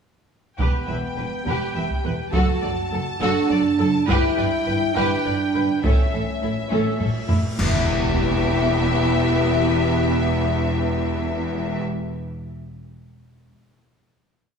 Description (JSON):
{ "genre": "cinematic, epic orchestral film score", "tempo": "69 BPM (dotted quarters)", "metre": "6/8", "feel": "straight", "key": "E dorian", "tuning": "A4 = 440 Hz", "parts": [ { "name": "rich symphonic violin section", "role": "melody", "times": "0.6-11.8 s", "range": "E5 to A5", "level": "-28 LUFS", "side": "left 4 dB", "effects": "none" }, { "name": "rich studio violin section", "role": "second line", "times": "0.6-11.8 s", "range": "C#4 to E5", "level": "-29 LUFS", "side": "left 2 dB", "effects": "none" }, { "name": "rich studio viola section", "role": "accompaniment", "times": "0.6-11.8 s", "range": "B3 to B4", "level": "-30 LUFS", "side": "right 5 dB", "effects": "none" }, { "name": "dark French horn section", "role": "sustained chords", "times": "0.6-11.8 s", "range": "B3 to G4", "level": "-25 LUFS", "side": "left 1 dB", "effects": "none" }, { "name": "rich symphonic cello section", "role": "bass", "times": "0.6-11.8 s", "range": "E2 to A2", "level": "-27 LUFS", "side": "right 2 dB", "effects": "none" }, { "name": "rich symphonic double bass section", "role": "bass", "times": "0.6-11.8 s", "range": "E1 to A1", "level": "-27 LUFS", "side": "right 1 dB", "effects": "none" }, { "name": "taiko ensemble", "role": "drums", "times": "0.6-7.7 s", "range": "none", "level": "-23 LUFS", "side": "equal", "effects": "none" }, { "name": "cymbal swell, clash cymbals and concert bass drum", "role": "percussion", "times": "4.1-8.7 s", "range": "none", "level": "-29 LUFS", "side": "left 1 dB", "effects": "none" }, { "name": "cymbal swell and sub drop", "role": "sound effects", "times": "7.1-9.3 s", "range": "none", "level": "-34 LUFS", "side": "equal", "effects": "none" } ], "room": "moderate concert hall reverb, RT60 2.2 s", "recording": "studio reverb", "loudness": "-19 LUFS", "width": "side -6 dB against mid", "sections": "0.6-7.6 theme; 7.6-11.1 final chord", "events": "drum fill 6.7-7.6; cymbal swell 7.1-7.6; band accent 7.6-8.2; impact 7.6-9.3", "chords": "0.6 Em; 2.3 D/F#; 4.1 G; 5.8 A; 7.6 Em", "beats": "| 0.59 1.47 | 2.34 3.22 | 4.09 4.96 | 5.84 6.71 | 7.58 8.46 | 9.33 10.20" }